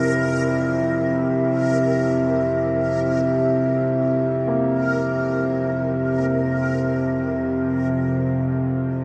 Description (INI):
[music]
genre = dark ambient drone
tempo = free time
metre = none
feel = none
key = unclear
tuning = A4 = 440 Hz
[part]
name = dark analog pad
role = sustained chords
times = 0.0-9.0 s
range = C4 to E5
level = -23 LUFS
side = equal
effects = chorus
[part]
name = warm concert grand piano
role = arpeggios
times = 0.0-9.0 s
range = G2 to Bb3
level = -38 LUFS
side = equal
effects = none
[part]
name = bowed-like drone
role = drone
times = 0.0-9.0 s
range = F2 to C3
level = -27 LUFS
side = equal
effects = built-in reverb
[part]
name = backwards swelling texture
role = texture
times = 0.0-9.0 s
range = Bb4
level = -32 LUFS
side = equal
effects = built-in reverb, ensemble chorus
[sound]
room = wet plate reverb, RT60 3.0 s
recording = dreamy mix soaked in reverb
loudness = -21 LUFS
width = mono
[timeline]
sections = 0.0-9.0 A section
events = none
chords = 0.0 C